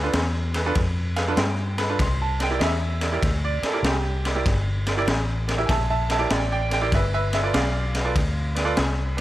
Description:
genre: electric blues shuffle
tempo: 97 BPM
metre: 4/4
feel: swing 66% on 8ths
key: G mixolydian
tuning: A4 = 440 Hz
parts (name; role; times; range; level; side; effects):
- bright upright piano; accompaniment; 0.0-9.2 s; D4 to C6; -26 LUFS; right 3 dB; none
- vintage muted fingered electric bass; bass; 0.0-9.2 s; G1 to G2; -25 LUFS; left 1 dB; none
- raw garage drum kit; drums; 0.1-9.2 s; kick drum, ride cymbal, snare drum; -25 LUFS; left 1 dB; none
room: light reverb, small room ambience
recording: none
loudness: -21 LUFS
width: side -15 dB against mid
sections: 0.0-9.2 A section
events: upright piano fill 0.8-2.0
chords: 0.0 G7; 2.0 C7; 6.9 G7

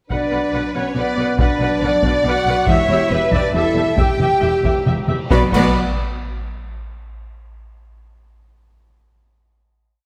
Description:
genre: cinematic, epic orchestral film score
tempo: 139 BPM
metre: 3/4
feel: straight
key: B minor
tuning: A4 = 439 Hz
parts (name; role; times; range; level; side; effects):
- warm symphonic violin section; melody; 0.1-5.8 s; G4 to D5; -27 LUFS; equal; none
- rich symphonic violin section; second line; 0.1-5.8 s; B4 to G5; -30 LUFS; equal; none
- silver concert flute; second line; 0.1-5.8 s; B4 to B5; -26 LUFS; equal; none
- rich symphonic viola section; accompaniment; 0.1-5.8 s; B3 to F#5; -27 LUFS; equal; none
- mellow French horn section; sustained chords; 0.1-5.5 s; B3 to B4; -24 LUFS; equal; none
- rich studio double bass section; bass; 0.1-5.8 s; E1 to B1; -27 LUFS; equal; none
- warm symphonic cello section; bass; 0.1-5.8 s; E2 to B2; -27 LUFS; equal; none
- solo taiko drums; drums; 0.1-6.4 s; none; -23 LUFS; equal; none
- cymbal swell, concert snare drum, concert bass drum and clash cymbals; percussion; 2.7-6.4 s; none; -30 LUFS; equal; none
room: wet scoring stage reverb, RT60 1.6 s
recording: none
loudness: -17 LUFS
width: mono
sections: 0.1-5.3 theme; 5.3-6.7 final chord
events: band accent 5.3-5.8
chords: 0.1 Bm; 2.7 Em; 5.3 Bm

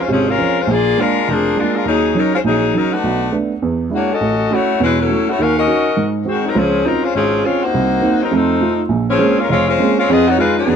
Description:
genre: jazz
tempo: 204 BPM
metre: 4/4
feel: swing 61% on 8ths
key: unclear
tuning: A4 = 441 Hz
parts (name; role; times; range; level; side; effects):
- bright saxophone section; melody; 0.0-10.8 s; Eb3 to F5; -16 LUFS; left 4 dB; none
- dark baby grand piano; accompaniment; 0.1-10.8 s; E1 to F#4; -17 LUFS; right 4 dB; none
room: studio reverb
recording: dry, close 1970s-style studio recording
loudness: -13 LUFS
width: side -7 dB against mid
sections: 0.0-8.9 A section; 8.9-10.8 B section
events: none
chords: 0.0 Dbmaj7; 0.7 Bb7; 1.9 Ebm7; 3.0 Cbm7; 3.6 E7; 4.2 A6; 5.4 Ebm7; 6.0 Ab7; 6.6 Dbmaj7; 7.7 Cm7b5; 8.3 F7; 8.9 Bbm9; 10.1 Fm7b5

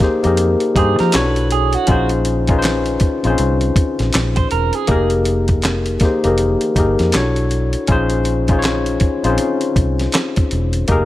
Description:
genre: R&B, neo-soul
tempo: 80 BPM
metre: 4/4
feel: swing 60% on 16ths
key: unclear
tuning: A4 = 438 Hz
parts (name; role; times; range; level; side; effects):
- barky tine electric piano; accompaniment; 0.0-11.1 s; Bb3 to Db5; -17 LUFS; left 2 dB; overdrive
- vintage muted fingered electric bass; bass; 0.0-11.1 s; E1 to F3; -19 LUFS; equal; none
- dusty soul sampler-style drum kit; drums; 0.0-11.1 s; handclaps, hi-hat, kick drum, snare drum; -18 LUFS; equal; none
- electric guitar through a small old amp; second line; 0.8-5.1 s; F#4 to C5; -21 LUFS; right 9 dB; none
room: light reverb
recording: none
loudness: -14 LUFS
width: side -15 dB against mid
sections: 0.0-11.1 A section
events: none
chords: 0.0 Fm11; 1.1 Bm7; 1.9 Bbm7; 4.9 Fm11; 7.1 Bm7; 7.9 Bbm7

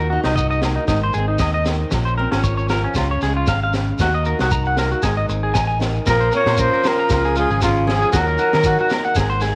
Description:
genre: highlife guitar band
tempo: 116 BPM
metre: 4/4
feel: swing 54% on 16ths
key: unclear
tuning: A4 = 440 Hz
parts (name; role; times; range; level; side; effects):
- picked old ladder-braced acoustic guitar; accompaniment; 0.0-9.6 s; Ab2 to Gb4; -28 LUFS; equal; none
- electric guitar at the edge of break-up; arpeggios; 0.0-9.5 s; Db4 to Bb5; -24 LUFS; equal; tape echo
- fingered electric bass; bass; 0.0-9.5 s; Ab1 to Eb3; -24 LUFS; equal; none
- crunchy breakbeat drum kit; drums; 0.2-9.5 s; kick drum, snare drum; -27 LUFS; equal; none
- agogo bells; percussion; 0.3-9.3 s; none; -35 LUFS; equal; none
- shekere; percussion; 0.3-9.6 s; none; -30 LUFS; equal; none
- breathy trumpet; melody; 6.1-8.9 s; F4 to Db5; -21 LUFS; equal; none
- raspy tenor saxophone; second line; 6.1-8.9 s; Db3 to Bb3; -31 LUFS; equal; tape echo
room: light reverb, small room ambience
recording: none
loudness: -18 LUFS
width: mono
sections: 0.0-6.1 A section; 6.1-9.6 B section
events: none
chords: 0.0 Ebm; 0.9 Ab; 1.9 Bbmadd9; 3.0 Db; 4.0 Ebm; 5.0 Ab; 6.1 Bbmadd9; 7.1 Db; 8.1 Ebm

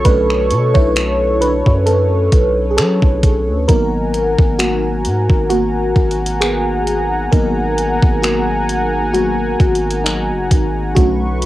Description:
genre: contemporary R&B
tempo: 66 BPM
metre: 4/4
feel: swing 54% on 16ths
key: G# minor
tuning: A4 = 438 Hz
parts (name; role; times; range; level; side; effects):
- FM electric piano with soft pad layer; accompaniment; 0.0-11.5 s; D3 to C#5; -16 LUFS; equal; chorus, phaser, cassette tape
- warm analog pad; sustained chords; 0.0-11.5 s; A3 to C#6; -22 LUFS; equal; chorus, sidechain pumping, cassette tape
- long sustained 808-style bass; bass; 0.0-11.5 s; F#1 to F#3; -19 LUFS; equal; none
- crisp 8-bit digital drum machine; drums; 0.0-11.5 s; finger snaps, hi-hat, kick drum; -14 LUFS; equal; overdrive, cassette tape
room: light reverb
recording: home recording on cassette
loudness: -13 LUFS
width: side -15 dB against mid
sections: 0.0-11.5 A section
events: FM electric piano solo 0.0-11.5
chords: 0.0 Bm9; 3.7 G#m9

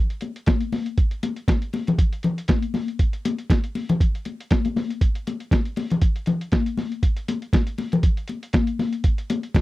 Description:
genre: disco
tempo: 119 BPM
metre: 4/4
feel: swing 56% on 16ths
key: none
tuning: none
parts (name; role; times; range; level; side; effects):
- lo-fi sampler-style drum kit; drums; 0.1-9.6 s; hi-hat, kick drum, snare drum; -20 LUFS; right 1 dB; none
- congas; percussion; 0.2-9.6 s; none; -24 LUFS; left 3 dB; none
room: little or no reverb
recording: dry, close 1970s-style studio recording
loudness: -21 LUFS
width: side -17 dB against mid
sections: 0.0-9.6 A section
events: none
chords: none

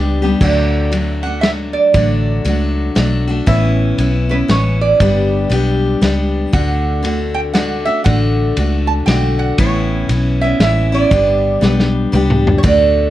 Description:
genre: honky-tonk and classic country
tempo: 118 BPM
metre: 3/4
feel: swing 63% on 8ths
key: D major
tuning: A4 = 440 Hz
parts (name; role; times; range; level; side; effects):
- picked steel-string acoustic guitar; accompaniment; 0.0-13.1 s; G2 to G4; -18 LUFS; left 2 dB; none
- vintage muted fingered electric bass; bass; 0.0-13.1 s; G1 to D2; -17 LUFS; equal; none
- lap resonator guitar; melody; 0.4-13.1 s; B4 to A5; -18 LUFS; right 5 dB; none
- vintage drum kit; drums; 0.4-12.8 s; crash cymbal, kick drum, ride cymbal, snare drum, toms; -18 LUFS; equal; none
room: light reverb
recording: dark, warm production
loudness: -12 LUFS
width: side -14 dB against mid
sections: 0.4-12.6 A section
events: drum fill 11.6-12.6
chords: 0.4 D; 3.5 Aadd9; 5.0 G; 6.5 D; 9.6 Aadd9; 11.1 G

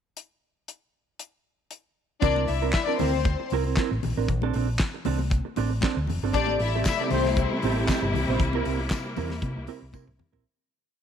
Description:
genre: disco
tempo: 117 BPM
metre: 4/4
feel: straight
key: unclear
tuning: A4 = 440 Hz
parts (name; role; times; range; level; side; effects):
- damped 70s drum kit; drums; 0.2-10.4 s; handclaps, hi-hat, kick drum, snare drum, toms; -29 LUFS; equal; none
- warm symphonic violin section; second line; 2.2-7.6 s; C4 to E5; -27 LUFS; left 8 dB; none
- mellow electric guitar; accompaniment; 2.2-10.4 s; C4 to C5; -30 LUFS; right 12 dB; none
- hollow-body short-scale fingered electric bass; bass; 2.2-10.4 s; F1 to C3; -28 LUFS; equal; none
- congas; percussion; 2.2-10.3 s; none; -36 LUFS; left 10 dB; none
- warm studio string section; sustained chords; 6.3-10.4 s; C3 to E4; -29 LUFS; left 2 dB; none
- tambourine; percussion; 6.9-10.1 s; none; -43 LUFS; left 13 dB; none
room: light reverb, small room ambience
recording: 1960s-style stereo with parts hard left and right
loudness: -23 LUFS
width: side -8 dB against mid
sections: 0.2-2.2 pickup bar; 2.2-10.4 pre-chorus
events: fade-out 8.4-10.4; drum fill 9.9-10.4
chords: 0.2 N.C.; 2.2 C7; 4.0 Bbmaj9; 6.3 Am7; 8.1 C7

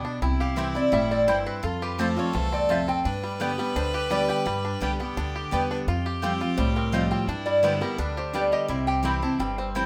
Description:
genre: bluegrass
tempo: 170 BPM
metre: 4/4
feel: straight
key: C major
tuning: A4 = 441 Hz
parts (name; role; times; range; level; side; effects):
- clear fiddle; second line; 0.0-9.9 s; C4 to B4; -36 LUFS; equal; none
- picked steel-string acoustic guitar; accompaniment; 0.0-9.9 s; E2 to G4; -31 LUFS; equal; none
- bluegrass banjo; arpeggios; 0.0-9.9 s; G3 to G4; -35 LUFS; equal; none
- upright bass; bass; 0.0-9.9 s; G1 to G2; -33 LUFS; equal; none
- lap resonator guitar; melody; 0.2-9.7 s; A4 to B5; -29 LUFS; equal; none
- mandolin; stabs; 0.6-9.8 s; A3 to A5; -34 LUFS; equal; none
room: moderate studio reverb, RT60 0.7 s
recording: none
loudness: -25 LUFS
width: mono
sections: 0.0-9.9 A section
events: none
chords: 0.2 C; 1.6 F; 3.1 G; 5.9 Fadd9; 7.3 G; 8.7 C

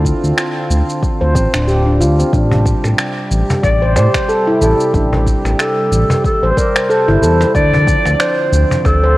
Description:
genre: organic downtempo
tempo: 92 BPM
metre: 4/4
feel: swing 57% on 16ths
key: D minor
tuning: A4 = 440 Hz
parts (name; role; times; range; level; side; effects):
- warm analog pad; sustained chords; 0.0-9.2 s; C3 to G4; -21 LUFS; equal; chorus, sidechain pumping
- smooth gliding synth bass; bass; 0.0-9.2 s; D1 to A2; -14 LUFS; equal; transformer saturation, sidechain pumping
- electronic kick drum; drums; 0.0-9.0 s; none; -17 LUFS; equal; overdrive, studio reverb
- quartz singing bowl; texture; 0.0-9.2 s; A5; -39 LUFS; right 4 dB; none
- electronic shaker and finger snaps; drums; 0.1-9.0 s; none; -21 LUFS; equal; studio reverb
- handpan; arpeggios; 1.2-9.2 s; C4 to D5; -18 LUFS; equal; digital delay
- cajon; percussion; 2.5-9.0 s; none; -20 LUFS; left 1 dB; none
- breathy clarinet; melody; 3.6-9.2 s; A4 to D5; -17 LUFS; equal; ping-pong delay
room: moderate lush hall reverb, RT60 1.9 s, small room ambience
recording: worn, warbling old tape, cassette tape, warbly pitch drift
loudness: -11 LUFS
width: side -18 dB against mid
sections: 0.0-9.2 A section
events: none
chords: 0.0 Dm7; 2.3 Am7; 7.5 Dm7

